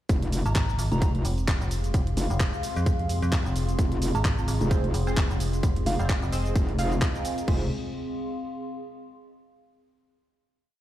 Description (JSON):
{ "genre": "bass house", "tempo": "130 BPM", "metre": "4/4", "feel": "swing 56% on 16ths", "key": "F minor", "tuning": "A4 = 440 Hz", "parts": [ { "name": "sweeping resonant pad", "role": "sustained chords", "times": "0.1-7.7 s", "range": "C3 to F4", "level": "-36 LUFS", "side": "left 2 dB", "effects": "wide subtle chorus, sidechain pumping" }, { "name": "metallic wobble bass", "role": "bass", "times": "0.1-7.7 s", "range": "F1", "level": "-26 LUFS", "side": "equal", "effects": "distortion, chorus, tube saturation, sidechain pumping" }, { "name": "electronic kick drum", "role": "drums", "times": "0.1-7.6 s", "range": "none", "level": "-24 LUFS", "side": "equal", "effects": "overdrive" }, { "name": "house drum kit", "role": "drums", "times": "0.1-7.6 s", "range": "cabasa, crash cymbal, handclaps, hi-hat", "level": "-34 LUFS", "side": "equal", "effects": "none" }, { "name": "warbly tape-like pad", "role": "texture", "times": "0.7-9.3 s", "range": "C4 to C6", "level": "-36 LUFS", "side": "right 1 dB", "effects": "chorus, built-in reverb, sidechain pumping" }, { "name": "soft synth bell", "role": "melody", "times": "0.5-1.1, 4.1-7.4 s", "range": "F5 to Bb5", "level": "-35 LUFS", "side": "right 2 dB", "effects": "chorus, phaser, digital delay" }, { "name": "metallic FM bass", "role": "bass", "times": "0.5-6.5 s", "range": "F1 to F2", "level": "-27 LUFS", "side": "equal", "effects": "overdrive, sidechain pumping" }, { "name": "band-passed chord stab", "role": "stabs", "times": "4.7-7.7 s", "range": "C4 to F5", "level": "-36 LUFS", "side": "right 2 dB", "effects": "phaser, analog chorus, sidechain pumping, digital delay" } ], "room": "digital ambience", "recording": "played on a big sound system in a bare room, large studio reverb", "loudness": "-23 LUFS", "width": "side -13 dB against mid", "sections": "0.1-7.5 drop; 7.5-9.3 final chord", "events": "drop 0.1-7.5", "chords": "0.1 Fm", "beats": "| 0.09 0.56 1.02 1.48 | 1.94 2.40 2.86 3.33 | 3.79 4.25 4.71 5.17 | 5.63 6.09 6.56 7.02 | 7.48 7.94 8.40 8.86" }